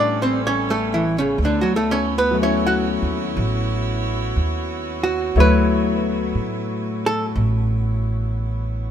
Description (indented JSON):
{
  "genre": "jazz ballad",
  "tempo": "60 BPM",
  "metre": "4/4",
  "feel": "swing 66% on 8ths",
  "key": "D major",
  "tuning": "A4 = 440 Hz",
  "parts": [
    { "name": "archtop guitar, miked and amplified", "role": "melody", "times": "0.0-7.3 s", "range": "C#3 to F#5", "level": "-20 LUFS", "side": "right 2 dB", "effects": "none" },
    { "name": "clear grand piano", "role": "accompaniment", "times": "0.0-8.9 s", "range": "F#3 to C#5", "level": "-25 LUFS", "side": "left 5 dB", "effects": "none" },
    { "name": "mellow saxophone section", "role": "sustained chords", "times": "0.0-8.9 s", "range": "G3 to C#5", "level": "-29 LUFS", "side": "right 3 dB", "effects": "none" },
    { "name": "upright bass", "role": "bass", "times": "0.0-8.9 s", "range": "A1 to A2", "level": "-22 LUFS", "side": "equal", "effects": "none" }
  ],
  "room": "light reverb",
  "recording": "minimal, uncompressed stereo recording",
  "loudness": "-18 LUFS",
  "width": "side -9 dB against mid",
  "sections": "0.0-8.9 A section",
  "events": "hollow-body jazz guitar solo 0.0-8.9",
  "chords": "0.0 A9; 1.4 Dmaj13",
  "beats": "0.41 | 1.39 2.37 3.37 4.36 | 5.35 6.34 7.34 8.35"
}